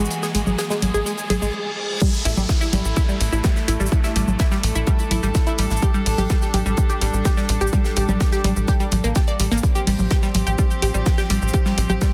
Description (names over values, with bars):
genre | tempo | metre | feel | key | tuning
melodic techno | 126 BPM | 4/4 | straight | A phrygian | A4 = 440 Hz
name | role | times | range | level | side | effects
rich chamber string section | sustained chords | 0.0-12.1 s | E3 to A4 | -32 LUFS | equal | sidechain pumping
unison pluck | arpeggios | 0.0-12.1 s | G3 to D5 | -27 LUFS | equal | sidechain pumping, digital delay
tight sequencer bass | bass | 0.0-12.0 s | A1 | -24 LUFS | equal | sidechain pumping
riser, reverse cymbal and downlifter | sound effects | 0.0-5.8 s | none | -34 LUFS | equal | none
house drum kit | drums | 0.1-12.1 s | congas, crash cymbal, hi-hat, shaker | -28 LUFS | equal | sidechain pumping on perc, sidechain pumping on hats, sidechain pumping on cymbals
tight funk drum kit | drums | 0.1-12.1 s | hi-hat, snare drum | -36 LUFS | equal | high-pass filter on hats, high-pass filter on snare, high-pass filter on room
electronic kick drum | drums | 2.0-12.1 s | none | -21 LUFS | equal | none
room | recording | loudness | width
light reverb, small room reverb | dense, heavily limited modern master | -20 LUFS | mono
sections
0.0-2.0 A section; 2.0-12.1 B section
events
build-up 0.0-2.0; riser 0.0-1.5; reverse cymbal 1.1-2.0; drop 2.0-12.1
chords
0.0 E/A; 2.0 A5; 5.8 G5/A; 9.6 Fsus2/A